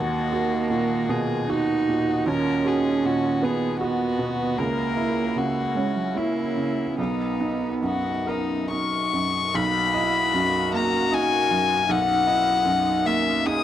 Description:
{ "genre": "neoclassical piano and strings", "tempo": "68-81 BPM", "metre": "3/4", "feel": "rubato", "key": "B major", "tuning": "A4 = 440 Hz", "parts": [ { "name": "rich violin", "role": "melody", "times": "0.0-13.6 s", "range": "D#4 to D#6", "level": "-25 LUFS", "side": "left 6 dB", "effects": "slapback echo" }, { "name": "warm cello", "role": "second line", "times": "0.0-13.6 s", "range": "F#3 to G#4", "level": "-26 LUFS", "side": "right 4 dB", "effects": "none" }, { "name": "clear upright piano", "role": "accompaniment", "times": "0.0-13.6 s", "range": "B1 to D#5", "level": "-26 LUFS", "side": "right 2 dB", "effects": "none" }, { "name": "pedal harmonium", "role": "sustained chords", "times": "0.0-13.6 s", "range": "A#3 to F#5", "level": "-36 LUFS", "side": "equal", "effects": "none" } ], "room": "light reverb", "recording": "dry, close 1970s-style studio recording", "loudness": "-21 LUFS", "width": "side -11 dB against mid", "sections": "0.0-9.5 A section; 9.5-13.6 B section", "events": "none", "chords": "0.0 Bmaj7/D#; 4.6 F#7/C#; 7.0 Bmaj7", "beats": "0.70 1.50 | 2.27 3.04 3.81 | 4.58 5.36 6.16 | 6.98 7.83 8.70 | 9.54 10.33 11.12 | 11.89 12.65 13.46" }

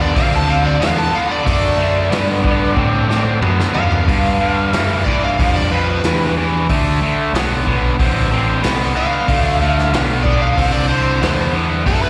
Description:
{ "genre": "blues rock power trio and southern rock", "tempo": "92 BPM", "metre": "4/4", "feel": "straight", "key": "unclear", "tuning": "A4 = 440 Hz", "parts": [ { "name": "overdriven slide guitar", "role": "melody", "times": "0.0-12.1 s", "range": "A4 to A5", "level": "-22 LUFS", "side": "equal", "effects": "slapback echo" }, { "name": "biting overdriven guitar", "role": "riff", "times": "0.0-12.1 s", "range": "G2 to C4", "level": "-20 LUFS", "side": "equal", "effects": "slapback echo" }, { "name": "growling picked electric bass", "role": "bass", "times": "0.0-12.1 s", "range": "A1 to A2", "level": "-21 LUFS", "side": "equal", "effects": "overdrive" }, { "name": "vintage drum kit", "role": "drums", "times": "0.2-12.0 s", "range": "hi-hat, kick drum, snare drum, toms", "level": "-23 LUFS", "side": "equal", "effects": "none" } ], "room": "light reverb", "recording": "live gig heard through the venue's PA, recital hall reverb", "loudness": "-16 LUFS", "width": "mono", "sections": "0.0-12.1 A section", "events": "drum fill 2.8-4.1", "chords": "0.0 D7; 4.1 G7; 6.7 D7(no3)", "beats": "0.16 0.81 | 1.46 2.12 2.77 3.42 | 4.08 4.73 5.38 6.03 | 6.68 7.33 7.98 8.63 | 9.28 9.93 10.57 11.22 | 11.86" }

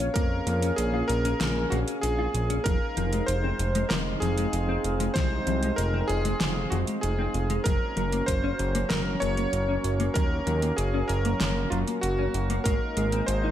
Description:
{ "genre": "synthwave", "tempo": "96 BPM", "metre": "4/4", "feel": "straight", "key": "unclear", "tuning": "A4 = 443 Hz", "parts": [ { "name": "clear electric grand piano", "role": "melody", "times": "0.0-13.5 s", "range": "F4 to Db5", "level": "-30 LUFS", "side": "equal", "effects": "digital delay, shimmer reverb" }, { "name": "chorused pulse-width pad", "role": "sustained chords", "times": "0.0-13.5 s", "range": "Gb3 to F5", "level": "-32 LUFS", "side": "right 1 dB", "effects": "sidechain pumping, shimmer reverb" }, { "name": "mellow electric guitar", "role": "riff", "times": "0.0-13.5 s", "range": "F3 to F4", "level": "-33 LUFS", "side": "left 2 dB", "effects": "ensemble chorus, tape echo, shimmer reverb" }, { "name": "fat analog bass", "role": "bass", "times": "0.0-13.5 s", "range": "F1 to F2", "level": "-28 LUFS", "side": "equal", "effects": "sidechain pumping" }, { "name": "pop drum kit", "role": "drums", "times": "0.0-13.4 s", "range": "hi-hat, snare drum", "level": "-32 LUFS", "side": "equal", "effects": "gated reverb" }, { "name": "electronic kick drum", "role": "drums", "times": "0.2-12.8 s", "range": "none", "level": "-27 LUFS", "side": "equal", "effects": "none" } ], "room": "moderate lush hall reverb, RT60 1.5 s", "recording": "none", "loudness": "-24 LUFS", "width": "side -11 dB against mid", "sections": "0.0-13.5 A section", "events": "none", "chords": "0.0 Bbm; 2.7 Fm7; 7.7 Gb; 12.7 Absus2", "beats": "| 0.16 0.78 1.41 2.03 | 2.66 3.28 3.91 4.53 | 5.16 5.78 6.41 7.03 | 7.66 8.28 8.91 9.53 | 10.16 10.78 11.41 12.03 | 12.66 13.28" }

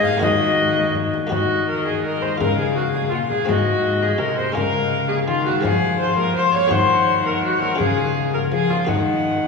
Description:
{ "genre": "classical, renaissance-style consort dance", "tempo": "166 BPM", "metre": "3/4", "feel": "straight", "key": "Eb dorian", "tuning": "A4 = 440 Hz", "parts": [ { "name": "bright alto recorder", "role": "melody", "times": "0.0-9.5 s", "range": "Eb5 to Gb5", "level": "-24 LUFS", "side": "left 4 dB", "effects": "none" }, { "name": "rich viola", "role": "second line", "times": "0.0-9.5 s", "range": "Eb4 to Db5", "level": "-20 LUFS", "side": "left 1 dB", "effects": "none" }, { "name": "buff-stop harpsichord", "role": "accompaniment", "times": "0.0-9.5 s", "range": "Ab2 to Ab4", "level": "-28 LUFS", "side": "left 4 dB", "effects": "none" }, { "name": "rich cello", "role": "bass", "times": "0.0-9.5 s", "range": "Ab2 to F3", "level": "-24 LUFS", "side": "left 2 dB", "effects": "none" }, { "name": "frame drum", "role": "percussion", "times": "0.0-9.5 s", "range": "none", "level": "-27 LUFS", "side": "left 2 dB", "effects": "none" } ], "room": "wet cathedral reverb, RT60 4.2 s", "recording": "recorded in a church or concert hall, small room ambience", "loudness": "-17 LUFS", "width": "side -4 dB against mid", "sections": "0.0-1.3 A section; 1.3-9.5 B section", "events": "none", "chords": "0.2 Ebm; 2.4 Db; 3.5 Ab; 4.6 Db; 5.6 Fm; 6.7 Ebm; 7.8 Db; 8.9 Ebm", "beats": "| 0.22 0.58 0.95 | 1.31 1.68 2.04 | 2.40 2.76 3.12 | 3.48 3.84 4.20 | 4.56 4.92 5.28 | 5.64 6.00 6.36 | 6.71 7.08 7.43 | 7.79 8.15 8.52 | 8.88 9.25" }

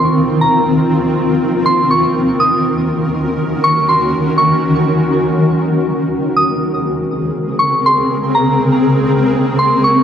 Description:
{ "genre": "hip hop", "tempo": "121 BPM", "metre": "4/4", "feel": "half-time", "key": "Bb minor", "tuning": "A4 = 440 Hz", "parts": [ { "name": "soft synth bell", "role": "melody", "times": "0.0-10.0 s", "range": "Bb5 to Eb6", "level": "-16 LUFS", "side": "right 1 dB", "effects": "chorus, tape echo" }, { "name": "granular cloud pad", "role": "sustained chords", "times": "0.0-10.0 s", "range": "Db3 to Bb4", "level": "-13 LUFS", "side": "equal", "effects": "built-in reverb" } ], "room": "moderate huge ambient reverb, RT60 8.9 s", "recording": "dark, warm production", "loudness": "-12 LUFS", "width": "side -8 dB against mid", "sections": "0.0-10.0 A section", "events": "none", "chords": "0.0 F7sus4; 2.1 Ebm7; 6.1 Bbm9", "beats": "| 0.17 0.66 1.16 1.65 | 2.15 2.65 3.14 3.64 | 4.13 4.63 5.12 5.62 | 6.12 6.61 7.11 7.60 | 8.10 8.60 9.09 9.59" }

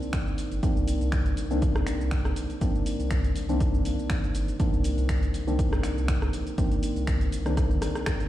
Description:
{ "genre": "deep house", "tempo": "121 BPM", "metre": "4/4", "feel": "swing 55% on 16ths", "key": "C minor", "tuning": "A4 = 439 Hz", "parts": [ { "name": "percussive organ stab", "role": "stabs", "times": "0.0-8.3 s", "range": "Eb3 to D4", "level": "-30 LUFS", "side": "left 1 dB", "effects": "chorus, sidechain pumping, tape echo" }, { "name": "deep house drum kit", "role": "drums", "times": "0.0-8.3 s", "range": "finger snaps, hi-hat, rim click, shaker", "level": "-36 LUFS", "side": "equal", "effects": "vintage 12-bit sampler grit" }, { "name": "electronic kick drum", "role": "drums", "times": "0.1-8.2 s", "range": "none", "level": "-26 LUFS", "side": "equal", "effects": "vintage 12-bit sampler grit" }, { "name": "round analog bass", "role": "bass", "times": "0.5-7.9 s", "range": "G1 to C2", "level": "-29 LUFS", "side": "equal", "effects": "tube saturation, sidechain pumping" } ], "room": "digital ambience", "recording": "played on a big sound system in a bare room, large studio reverb", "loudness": "-24 LUFS", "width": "side -14 dB against mid", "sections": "0.0-8.3 A section", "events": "drum fill 7.6-8.3", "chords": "0.0 Cm9", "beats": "0.13 | 0.63 1.12 1.62 2.12 | 2.61 3.11 3.60 4.10 | 4.60 5.09 5.59 6.08 | 6.58 7.08 7.57 8.07" }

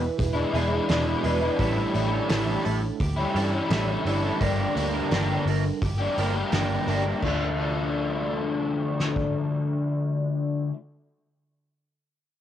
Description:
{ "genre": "rock, shoegaze and dream pop", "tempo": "85 BPM", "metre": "4/4", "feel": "straight", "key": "D minor", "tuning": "A4 = 439 Hz", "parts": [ { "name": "fingerpicked twelve-string acoustic guitar", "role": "arpeggios", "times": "0.0-8.1 s", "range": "D4 to B4", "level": "-35 LUFS", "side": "right 4 dB", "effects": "wide subtle chorus, cassette tape, tape echo" }, { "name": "electric guitar through a small old amp", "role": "riff", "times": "0.0-10.8 s", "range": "G2 to Bb4", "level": "-32 LUFS", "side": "right 10 dB", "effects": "reverse reverb, cassette tape" }, { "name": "vintage muted picked electric bass", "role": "bass", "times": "0.0-10.3 s", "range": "E1 to G2", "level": "-28 LUFS", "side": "equal", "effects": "none" }, { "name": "loose indie drum kit", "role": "drums", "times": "0.2-9.3 s", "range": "crash cymbal, hi-hat, kick drum, snare drum", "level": "-31 LUFS", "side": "equal", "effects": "cassette tape" }, { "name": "crunchy overdriven guitar", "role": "riff", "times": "0.3-10.7 s", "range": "E2 to G4", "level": "-26 LUFS", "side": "left 4 dB", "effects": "analog chorus, cassette tape" } ], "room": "light reverb, small room ambience", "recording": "home recording on cassette", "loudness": "-23 LUFS", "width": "side -10 dB against mid", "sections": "0.0-7.2 A section; 7.2-10.0 B section", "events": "none", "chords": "0.0 E7; 1.6 A7sus4; 4.4 Gm7; 7.2 Dm", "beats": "0.19 0.89 | 1.59 2.29 2.99 3.70 | 4.40 5.10 5.81 6.51 | 7.22 7.92 8.63 9.33" }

